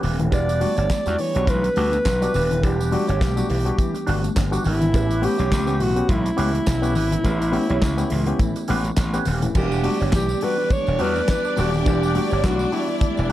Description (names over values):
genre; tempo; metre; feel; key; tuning
disco; 104 BPM; 4/4; swing 56% on 16ths; E dorian; A4 = 440 Hz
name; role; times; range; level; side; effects
auto-wah clav; accompaniment; 0.0-13.3 s; A2 to G4; -28 LUFS; left 3 dB; overdrive
mellow electric guitar; accompaniment; 0.0-13.3 s; C#4 to C#5; -31 LUFS; right 6 dB; wah
mellow tonewheel organ; sustained chords; 0.0-13.3 s; E3 to G4; -31 LUFS; right 1 dB; chorus vibrato, wide subtle chorus
gritty slap bass; bass; 0.0-13.3 s; D#1 to E2; -23 LUFS; equal; overdrive
damped 70s drum kit; drums; 0.0-13.3 s; crash cymbal, handclaps, hi-hat, kick drum, snare drum; -25 LUFS; equal; none
congas; percussion; 0.0-13.2 s; none; -31 LUFS; left 5 dB; none
breathy alto saxophone; melody; 0.3-13.3 s; E4 to D5; -24 LUFS; right 1 dB; none
tambourine; percussion; 0.3-13.3 s; none; -42 LUFS; right 6 dB; none
clear studio string section; second line; 9.5-13.3 s; D4 to D5; -28 LUFS; left 1 dB; none
room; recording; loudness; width
light reverb, studio ambience; dark, warm production; -18 LUFS; side -14 dB against mid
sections
0.0-9.6 A section; 9.6-13.3 B section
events
none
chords
0.3 Em7; 4.9 A9; 9.6 Em7